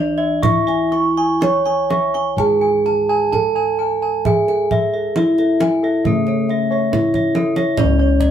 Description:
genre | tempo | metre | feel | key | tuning
Javanese gamelan | 60-71 BPM | 4/4 | straight | C# pelog | A4 = 440 Hz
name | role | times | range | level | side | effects
gamelan-type bronze metallophone | melody | 0.0-8.3 s | A3 to C#5 | -18 LUFS | right 1 dB | none
gamelan-type bossed gongs | arpeggios | 0.0-8.3 s | A4 to C#6 | -22 LUFS | left 1 dB | none
gamelan-type bronze metallophone | arpeggios | 0.0-8.3 s | A4 to C#6 | -24 LUFS | equal | none
gamelan-type bossed gongs | bass | 0.0-8.3 s | C#2 to G#4 | -24 LUFS | right 1 dB | none
kendang | percussion | 0.4-8.3 s | none | -22 LUFS | right 2 dB | none
room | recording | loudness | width
moderate studio reverb, RT60 0.5 s | band playing live in one room | -14 LUFS | side -9 dB against mid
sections
0.0-7.8 A section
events
drum fill 7.1-7.8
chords
none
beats
| 0.43 1.42 2.39 3.33 | 4.26 5.17 6.06 6.93 | 7.79

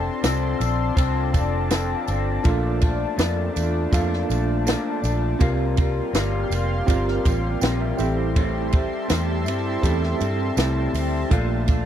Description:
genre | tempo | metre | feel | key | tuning
indie pop, bedroom pop | 81 BPM | 4/4 | straight | Bb lydian | A4 = 440 Hz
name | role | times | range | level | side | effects
electric guitar through a small old amp | accompaniment | 0.0-11.9 s | A2 to A4 | -26 LUFS | left 5 dB | lush chorus, vibrato effect
lush unison pad | sustained chords | 0.0-11.9 s | F4 to C6 | -32 LUFS | right 1 dB | chorus
vintage muted fingered electric bass | bass | 0.0-11.9 s | F1 to G2 | -24 LUFS | equal | none
compact cocktail drum kit | drums | 0.2-11.9 s | hi-hat, kick drum, ride cymbal, snare drum | -21 LUFS | equal | none
tambourine | percussion | 0.2-11.9 s | none | -39 LUFS | right 28 dB | none
tine electric piano | accompaniment | 2.4-11.9 s | Bb3 to G5 | -28 LUFS | right 5 dB | medium stereo tremolo, cassette tape
room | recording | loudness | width
little or no reverb | dry, close 1970s-style studio recording | -20 LUFS | side -10 dB against mid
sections
0.0-11.9 A section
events
tine electric piano fill 7.2-8.4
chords
0.0 F6; 2.5 Bbmaj7; 5.4 C7sus4; 8.0 Am7; 11.3 Bbmaj7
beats
0.24 0.97 1.71 | 2.45 3.19 3.93 4.67 | 5.40 6.14 6.88 7.62 | 8.36 9.10 9.83 10.57 | 11.31

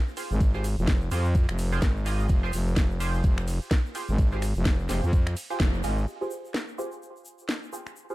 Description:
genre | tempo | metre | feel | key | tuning
bass house | 127 BPM | 4/4 | swing 58% on 16ths | F minor | A4 = 440 Hz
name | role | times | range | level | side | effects
band-passed chord stab | stabs | 0.0-8.1 s | F4 to Eb5 | -36 LUFS | right 3 dB | phaser, ensemble chorus, sidechain pumping, digital delay
tube shaker | percussion | 0.1-8.1 s | none | -48 LUFS | left 3 dB | none
garage drum kit | drums | 0.2-7.9 s | finger snaps, hi-hat, ride cymbal, snare drum | -34 LUFS | equal | none
growling FM bass | bass | 0.3-6.1 s | F1 to F2 | -26 LUFS | equal | overdrive, sidechain pumping
electronic kick drum | drums | 0.4-5.7 s | none | -22 LUFS | equal | none
room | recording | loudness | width
little or no reverb | dark, warm production | -24 LUFS | side -18 dB against mid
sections
0.0-6.1 A section; 6.1-8.1 B section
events
drop 0.0-6.1; band accent 5.6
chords
0.0 Fmadd9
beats
| 0.41 0.88 1.35 1.82 | 2.29 2.77 3.24 3.71 | 4.18 4.66 5.13 5.60 | 6.07 6.55 7.02 7.49 | 7.96

